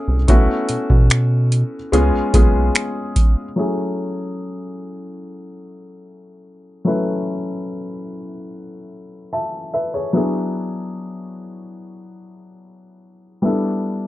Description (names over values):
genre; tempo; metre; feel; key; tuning
contemporary R&B; 73 BPM; 4/4; straight; F# minor; A4 = 440 Hz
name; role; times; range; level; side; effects
dark baby grand piano; accompaniment; 0.0-14.1 s; F#3 to A5; -22 LUFS; left 1 dB; none
rubbery square bass; bass; 0.1-2.7 s; B1 to B2; -17 LUFS; equal; none
booming analog drum machine; drums; 0.3-3.4 s; finger snaps, hi-hat, kick drum; -14 LUFS; equal; none
room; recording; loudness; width
little or no reverb; low-pass filter, nothing above 10.5 kHz; -17 LUFS; side -16 dB against mid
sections
0.0-3.6 A section; 3.6-14.1 B section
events
filter sweep 3.6-14.1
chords
0.3 B7sus4; 1.9 C#7; 3.6 F#m7; 10.1 E7; 13.4 G6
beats
| 0.28 1.10 1.93 2.75 | 3.57 4.39 5.21 6.04 | 6.86 7.68 8.50 9.32 | 10.15 10.97 11.79 12.61 | 13.43